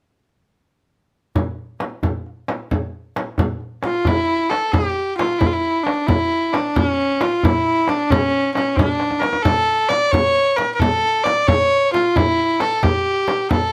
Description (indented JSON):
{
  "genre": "Persian modal ensemble",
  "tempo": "89 BPM (dotted quarters)",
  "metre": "6/8",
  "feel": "straight",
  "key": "A dastgah homayun",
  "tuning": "A4 = 441 Hz",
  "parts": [
    { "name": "frame drum", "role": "percussion", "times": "1.4-13.6 s", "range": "none", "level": "-25 LUFS", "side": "equal", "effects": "none" },
    { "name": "tombak", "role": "percussion", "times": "1.4-13.6 s", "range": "none", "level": "-25 LUFS", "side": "equal", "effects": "none" },
    { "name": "clear kamancheh", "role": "melody", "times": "3.8-13.7 s", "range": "C#4 to D5", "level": "-20 LUFS", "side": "equal", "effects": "none" }
  ],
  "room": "light reverb",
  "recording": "close, detailed microphones",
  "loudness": "-19 LUFS",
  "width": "mono",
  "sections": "1.4-4.1 A section; 4.1-13.7 B section",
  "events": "drum fill 9.0-9.5",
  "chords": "none"
}